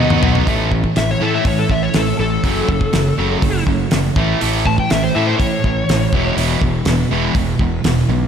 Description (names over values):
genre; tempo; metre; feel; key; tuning
classic rock; 122 BPM; 4/4; straight; A major; A4 = 438 Hz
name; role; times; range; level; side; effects
overdriven slide guitar; melody; 0.0-6.3 s; A4 to A5; -22 LUFS; left 3 dB; slapback echo
string machine, full ensemble; sustained chords; 0.0-8.3 s; F#3 to C#5; -29 LUFS; equal; none
distorted electric guitar; riff; 0.0-8.3 s; E2 to F#4; -20 LUFS; right 8 dB; overdrive, slapback echo
overdriven semi-hollow guitar; riff; 0.0-8.3 s; E2 to B3; -22 LUFS; left 10 dB; slapback echo
fuzz fingered electric bass; bass; 0.0-8.3 s; E1 to A2; -20 LUFS; equal; overdrive
damped 70s drum kit; drums; 0.1-8.0 s; hi-hat, kick drum, snare drum, toms; -19 LUFS; equal; none
room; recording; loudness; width
moderate lush hall reverb, RT60 1.7 s, small room ambience; big arena sound; -14 LUFS; side -8 dB against mid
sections
0.5-8.3 A section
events
drum fill 0.0-0.5; electric slide guitar solo 0.5-8.3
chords
0.5 A; 2.4 F#m; 4.2 A; 6.1 E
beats
| 0.48 0.97 1.46 1.95 | 2.44 2.93 3.42 3.92 | 4.41 4.90 5.39 5.88 | 6.38 6.87 7.36 7.85